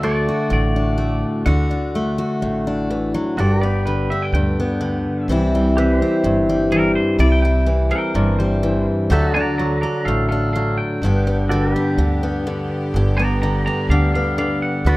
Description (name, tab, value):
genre	honky-tonk and classic country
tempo	126 BPM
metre	4/4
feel	straight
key	G major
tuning	A4 = 437 Hz
part	twangy electric guitar	melody	0.0-15.0 s	A4 to Bb5	-26 LUFS	right 1 dB	none
part	picked steel-string acoustic guitar	accompaniment	0.0-15.0 s	G2 to A4	-19 LUFS	left 1 dB	none
part	pedal steel guitar	sustained chords	0.0-15.0 s	F#4 to E5	-28 LUFS	right 2 dB	lush chorus
part	upright bass	bass	0.0-15.0 s	G1 to D2	-21 LUFS	equal	none
part	rich chamber string section	sustained chords	11.0-15.0 s	D3 to G4	-30 LUFS	right 1 dB	none
room	light reverb, small room reverb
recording	rough home demo mix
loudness	-16 LUFS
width	side -19 dB against mid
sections	0.0-3.4 A section; 3.4-15.0 B section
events	clean electric guitar solo 3.4-15.0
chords	0.0 D; 3.4 G; 5.3 C; 9.1 D; 11.0 G